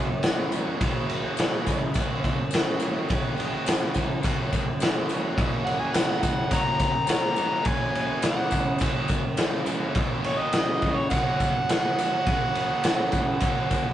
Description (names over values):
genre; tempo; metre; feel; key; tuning
garage rock duo or trio; 105 BPM; 4/4; straight; F# major; A4 = 440 Hz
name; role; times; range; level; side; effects
crunchy overdriven guitar; riff; 0.0-13.9 s; F#2 to F#4; -29 LUFS; right 1 dB; none
raw garage drum kit; drums; 0.2-13.8 s; kick drum, ride cymbal, snare drum; -25 LUFS; equal; none
tambourine; percussion; 0.2-13.8 s; none; -42 LUFS; left 6 dB; none
overdriven harmonica; melody; 5.6-13.9 s; C#5 to A#5; -27 LUFS; right 1 dB; none
room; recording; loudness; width
light reverb; rough rehearsal-room recording, nothing above 10.4 kHz; -22 LUFS; side -12 dB against mid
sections
0.0-13.9 A section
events
none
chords
0.0 F#